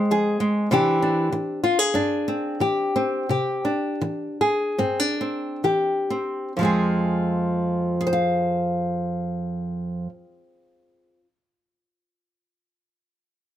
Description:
folk, solo fingerstyle acoustic guitar; 62-98 BPM; 4/4; rubato; F dorian; A4 = 440 Hz
nylon-string guitar; solo; 0.0-11.3 s; F2 to F5; -21 LUFS; equal
light reverb; close, detailed microphones; -21 LUFS; side -11 dB against mid
0.0-6.6 A section; 6.6-10.4 B section
slowing down 0.7-6.6
0.0 Fm; 0.7 Cadd9; 6.6 Fm

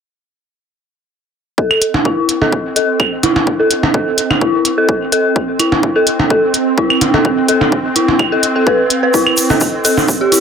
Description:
minimal techno; 127 BPM; 4/4; swing 53% on 16ths; A4 = 441 Hz
dark detuned synth bell; riff; 1.6-10.4 s; E4 to B4; -14 LUFS; left 1 dB; chorus, phaser, sidechain pumping, low-pass filter, dub echo
electronic kick drum; drums; 1.6-10.2 s; -18 LUFS; equal; high-pass filter on kick
swarming drone; texture; 2.3-10.4 s; C4; -20 LUFS; right 2 dB; built-in reverb, sidechain pumping
claves and percussion blips; percussion; 1.7-10.1 s; -16 LUFS; right 2 dB; dub echo
electronic hi-hat; drums; 1.8-10.4 s; -16 LUFS; left 1 dB
egg shaker; percussion; 9.1-10.4 s; -18 LUFS; right 2 dB
wet small room reverb, RT60 0.5 s; dense, heavily limited modern master; -11 LUFS; side -7 dB against mid
1.6-10.4 A section
filter sweep on synth bell 1.6-10.4

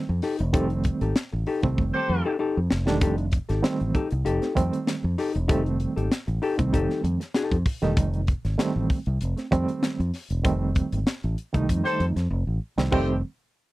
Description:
funk; 97 BPM; 4/4; straight; F mixolydian; A4 = 440 Hz
barky reed electric piano; stabs; 0.0-13.2 s; Eb3 to Eb4; -27 LUFS; right 3 dB; overdrive, fast tremolo
hollow-body jazz guitar; accompaniment; 0.1-8.0, 12.9-13.1 s; Eb4 to A4; -27 LUFS; left 4 dB
fingered electric bass; bass; 0.1-13.2 s; E1 to F2; -25 LUFS; equal
tight funk drum kit; drums; 0.2-13.1 s; crash cymbal, hi-hat, kick drum, snare drum; -25 LUFS; equal
mellow horn section; second line; 1.9-2.3, 11.8-13.1 s; A3 to C5; -26 LUFS; left 1 dB
little or no reverb; dry, close 1970s-style studio recording; -22 LUFS; side -18 dB against mid
0.0-12.9 A section
band accent 0.5-3.0, 10.4-12.9; drum fill 1.8-3.0, 12.3-12.9
0.0 F9

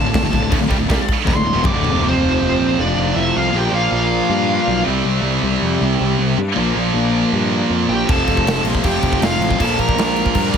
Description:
heavy metal; 158 BPM; 4/4; straight; A4 = 440 Hz
high-gain lead guitar; melody; 0.0-4.8, 7.9-10.6 s; C5 to D6; -22 LUFS; equal; distortion, tape echo
rich chamber string section; sustained chords; 0.0-10.6 s; F3 to F5; -30 LUFS; left 1 dB
distorted electric guitar; riff; 0.0-10.6 s; D2 to C4; -24 LUFS; left 1 dB; overdrive
heavy high-gain guitar; riff; 0.0-10.6 s; D2 to C4; -24 LUFS; left 14 dB; distortion
heavy high-gain guitar; riff; 0.0-10.6 s; D2 to C4; -22 LUFS; right 12 dB; distortion
fuzz picked electric bass; bass; 0.0-10.6 s; D1 to G2; -21 LUFS; equal; overdrive
big rock drum kit; drums; 0.1-1.9, 8.1-10.6 s; crash cymbal, kick drum, snare drum, toms; -20 LUFS; equal
high-gain lead guitar; second line; 2.0-4.8, 7.9-10.6 s; C4 to Bb4; -24 LUFS; right 4 dB; distortion
light reverb; -14 LUFS; side -7 dB against mid
0.0-2.0 A section; 2.0-10.6 B section
lead electric guitar solo 0.0-2.0; drum fill 1.3-2.0
0.0 Dm; 2.0 F; 3.5 Bb; 4.9 C; 6.6 Bb; 8.1 F; 9.6 Bb

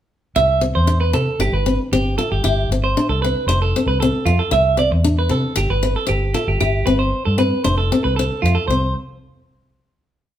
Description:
highlife; 115 BPM; 4/4; straight; C major; A4 = 441 Hz
picked steel-string acoustic guitar; accompaniment; 0.4-8.9 s; C4 to F4; -22 LUFS; left 4 dB
clean electric guitar; arpeggios; 0.4-8.9 s; F4 to E5; -20 LUFS; right 4 dB
vintage muted fingered electric bass; bass; 0.4-8.9 s; F1 to C3; -19 LUFS; equal
moderate large studio reverb, RT60 1.2 s; band playing live in one room; -16 LUFS; side -11 dB against mid
0.4-8.7 groove; 8.7-10.4 final chord
0.4 C; 1.4 Gsus4; 2.4 C/G; 3.5 F; 4.5 C; 5.6 Gsus4; 6.6 C/G; 7.7 F; 8.7 N.C.

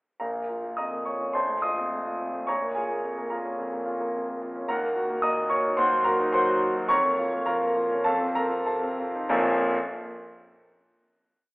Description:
classical, virtuoso piano study; 92-111 BPM; 4/4; rubato; Bb minor; A4 = 440 Hz
clear concert grand piano; solo; 0.2-9.8 s; Bb1 to Eb6; -24 LUFS; equal
wet recital hall reverb, RT60 1.6 s; recorded in a church or concert hall, telephone sound; -24 LUFS; side -26 dB against mid
0.2-9.3 A section; 9.3-11.5 final chord
slowing down 3.6-9.3
0.2 Bbm; 1.3 F7/Bb; 2.5 Bbm; 4.7 Ebm; 5.8 Cdim/Eb; 6.9 Bbm/F; 8.1 F7; 9.3 Bbm

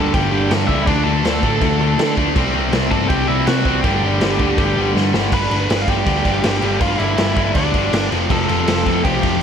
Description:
punk rock; 162 BPM; 4/4; straight; G mixolydian from 5.3 s; A4 = 440 Hz
biting lead guitar; melody; 0.0-9.4 s; D4 to B5; -22 LUFS; equal; overdrive, digital delay
distorted electric guitar; riff; 0.0-9.4 s; F2 to D4; -20 LUFS; left 1 dB; overdrive
distorted electric guitar; riff; 0.0-5.3, 8.3-9.4 s; F2 to D4; -21 LUFS; left 1 dB; distortion
hollow-body short-scale picked electric bass; bass; 0.0-9.4 s; F1 to D3; -22 LUFS; equal
raw garage drum kit; drums; 0.1-9.3 s; crash cymbal, kick drum, snare drum; -20 LUFS; equal
light reverb, studio reverb; -14 LUFS; side -7 dB against mid
0.0-5.3 A section; 5.3-9.4 B section
drum fill 4.9-5.3
0.0 G5; 0.9 D5; 2.4 C; 3.8 G5; 8.1 F

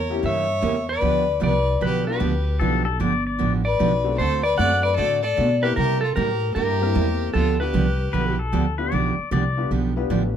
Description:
country, western swing; 152 BPM; 4/4; swing 65% on 8ths; G mixolydian; A4 = 437 Hz
clean lap steel guitar; melody; 0.0-8.3 s; A4 to F#5; -23 LUFS; left 2 dB; plate reverb
clear fiddle; second line; 0.0-8.4 s; F4 to D5; -29 LUFS; right 1 dB
upright bass; bass; 0.0-10.4 s; G1 to C3; -24 LUFS; equal
clear upright piano; accompaniment; 0.1-10.4 s; G3 to B4; -29 LUFS; left 6 dB
picked steel-string acoustic guitar; accompaniment; 0.2-10.2 s; C3 to A4; -26 LUFS; right 7 dB
pedal steel guitar; second line; 2.6-3.5, 8.1-9.7 s; A4 to D5; -27 LUFS; left 6 dB
moderate club reverb, RT60 0.5 s; -19 LUFS; side -9 dB against mid
0.0-10.4 A section
0.0 C#dim7; 1.0 G7; 4.2 D7; 5.8 C7; 7.3 G7

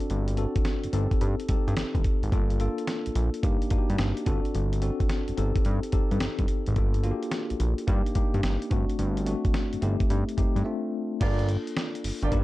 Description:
R&B, new jack swing; 108 BPM; 4/4; swing 66% on 16ths; G minor; A4 = 440 Hz
bell-like tine electric piano; accompaniment; 0.0-12.4 s; A3 to A4; -31 LUFS; left 2 dB; medium stereo tremolo
dusty soul sampler-style drum kit; drums; 0.0-12.4 s; crash cymbal, hi-hat, kick drum, snare drum; -27 LUFS; equal
fat analog bass; bass; 0.1-12.4 s; G1 to G2; -27 LUFS; equal
mellow horn section; stabs; 11.2-12.3 s; D4 to D5; -33 LUFS; right 5 dB; tape echo
little or no reverb; dark, warm production; -24 LUFS; side -17 dB against mid
0.0-11.2 A section; 11.2-12.4 B section
break 10.7-11.2
0.0 D7/G; 0.9 Am7b5/G; 2.3 Gm7; 3.4 Ebmaj7/G; 4.3 D7/G; 5.4 Am7b5/G; 6.8 Gm7; 7.9 Ebmaj7/G; 8.7 D7/G; 9.8 Am7b5/G; 10.7 Dm7; 11.2 Gm7

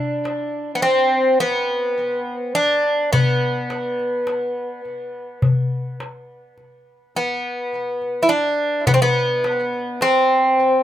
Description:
Turkish makam ensemble; 104 BPM (eighths); 10/8; straight; A4 = 441 Hz
Greek bouzouki; melody; 0.0-10.8 s; B3 to E4; -18 LUFS; equal; tape echo
darbuka; percussion; 0.3-10.7 s; -20 LUFS; left 2 dB
light reverb; -17 LUFS; side -12 dB against mid
0.0-10.8 A section

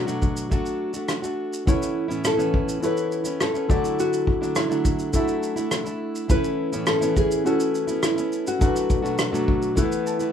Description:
acoustic pop; 104 BPM; 4/4; straight; A major; A4 = 440 Hz
nylon-string guitar; melody; 0.0-10.3 s; E4 to B4; -27 LUFS; equal
fingerpicked plugged-in steel-string acoustic guitar; accompaniment; 0.0-10.3 s; A2 to F#4; -26 LUFS; right 3 dB
natural country drum kit; drums; 0.1-10.3 s; kick drum, rim click, shaker; -24 LUFS; equal
warm upright piano; accompaniment; 1.7-10.3 s; A3 to A5; -27 LUFS; left 5 dB
little or no reverb; rough home demo mix; -21 LUFS; side -8 dB against mid
0.0-10.3 A section
upright piano fill 9.8-10.3
0.0 Bm7; 1.7 Aadd9; 3.7 Dadd9; 6.3 Aadd9; 8.6 Bm7; 9.8 Esus4

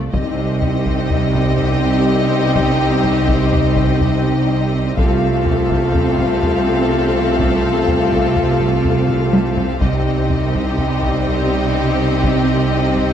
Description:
cinematic, hybrid orchestral and electronic film score; 124 BPM; 5/4; straight; C dorian; A4 = 439 Hz
swelling detuned saw bass; bass; 0.0-13.1 s; C2; -24 LUFS; equal
warm symphonic violin section; melody; 0.1-13.1 s; Eb5 to F5; -25 LUFS; left 6 dB
warm symphonic violin section; second line; 0.1-13.1 s; G4 to A4; -25 LUFS; left 2 dB
warm symphonic viola section; accompaniment; 0.1-13.1 s; C4; -24 LUFS; equal
mellow French horn section; sustained chords; 0.1-13.1 s; G3 to F4; -20 LUFS; left 3 dB
rich symphonic cello section; bass; 0.1-13.1 s; C3; -21 LUFS; right 4 dB
rich symphonic double bass section; bass; 0.1-13.1 s; C2; -22 LUFS; right 5 dB
taiko ensemble; drums; 0.1-13.1 s; -22 LUFS; equal
moderate scoring stage reverb, RT60 1.6 s; -14 LUFS; side -9 dB against mid
0.1-13.1 A section
drum fill 9.1-9.8
0.1 Cm; 5.0 F/C; 9.8 Cm

